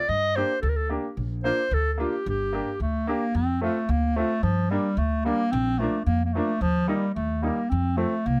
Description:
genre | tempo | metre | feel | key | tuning
klezmer | 110 BPM | 2/4 | straight | G minor | A4 = 442 Hz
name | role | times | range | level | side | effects
mellow clarinet | melody | 0.0-8.4 s | F3 to Eb5 | -28 LUFS | equal | none
upright bass | bass | 0.1-8.4 s | G1 to G2 | -29 LUFS | equal | none
clear upright piano | accompaniment | 0.4-8.1 s | F3 to G4 | -32 LUFS | equal | none
room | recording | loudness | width
little or no reverb | close, detailed microphones | -25 LUFS | mono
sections
0.0-3.3 A section; 3.3-8.4 A section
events
none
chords
0.1 Gm; 1.2 Bb; 2.3 Gm; 3.3 F; 4.4 Gm; 5.5 Bb; 6.6 Eb; 7.7 F

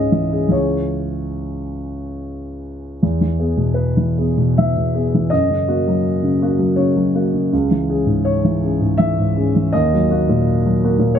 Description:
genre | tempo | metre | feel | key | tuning
neoclassical minimalist piano | 70-84 BPM | 3/4 | rubato | C# dorian | A4 = 440 Hz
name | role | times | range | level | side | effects
warm grand piano | solo | 0.0-11.2 s | C#2 to E5 | -15 LUFS | equal | none
room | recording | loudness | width
little or no reverb | close, detailed microphones | -15 LUFS | side -8 dB against mid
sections
0.0-3.0 A section; 3.0-11.2 B section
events
none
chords
0.0 C#m; 3.0 E; 5.3 F#; 7.5 C#m; 9.7 D#m

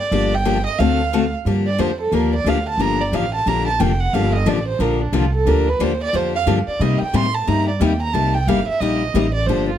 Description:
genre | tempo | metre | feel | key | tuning
acoustic string swing (jazz manouche) | 180 BPM | 4/4 | swing 62% on 8ths | G minor | A4 = 440 Hz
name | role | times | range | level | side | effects
warm violin | melody | 0.0-9.8 s | D4 to C6 | -21 LUFS | right 4 dB | none
picked steel-string acoustic guitar | accompaniment | 0.1-9.7 s | C3 to A4 | -20 LUFS | left 6 dB | none
upright bass | bass | 0.1-9.8 s | F1 to C3 | -21 LUFS | right 1 dB | none
room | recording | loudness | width
moderate studio reverb, RT60 0.6 s | none | -16 LUFS | side -10 dB against mid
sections
0.0-1.5 A section; 1.5-9.8 B section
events
violin solo 1.5-9.8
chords
0.1 Gm7; 0.8 D7#9; 1.5 Gm7; 6.8 Cm7

